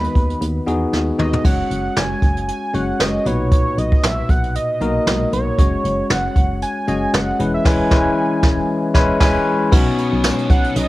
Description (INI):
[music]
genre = 1980s-style pop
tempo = 116 BPM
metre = 4/4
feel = swing 55% on 16ths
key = B major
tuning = A4 = 439 Hz
[part]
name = octave-doubled lead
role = melody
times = 0.0-10.9 s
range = B4 to G#5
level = -24 LUFS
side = right 2 dB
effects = chorus, tape echo
[part]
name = barky tine electric piano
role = accompaniment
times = 0.0-10.9 s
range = A#2 to G#5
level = -20 LUFS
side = left 2 dB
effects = cassette tape
[part]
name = solid FM bass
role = bass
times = 0.0-10.9 s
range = E1 to E2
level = -23 LUFS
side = equal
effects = none
[part]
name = jazz brush drum kit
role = drums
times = 0.0-10.9 s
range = crash cymbal, hi-hat, kick drum, snare drum, tambourine, toms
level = -17 LUFS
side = equal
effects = none
[part]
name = high-gain distorted guitar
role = accompaniment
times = 9.7-10.9 s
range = B2 to B3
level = -28 LUFS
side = right 1 dB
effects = distortion, ensemble chorus, cassette tape
[sound]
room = light reverb, studio reverb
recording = home recording on cassette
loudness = -15 LUFS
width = side -17 dB against mid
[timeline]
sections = 0.0-1.4 A section; 1.4-9.7 B section; 9.7-10.9 C section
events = drum fill 0.9-1.4; band accent 7.7-9.7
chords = 0.0 B/D#; 1.4 F#sus2; 3.3 Bmaj7; 5.6 F#sus2; 7.4 C#m7/E; 9.7 Badd9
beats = 0.41 0.93 | 1.45 1.97 2.48 3.00 | 3.52 4.04 4.55 5.07 | 5.59 6.10 6.62 7.14 | 7.66 8.17 8.69 9.21 | 9.72 10.24 10.76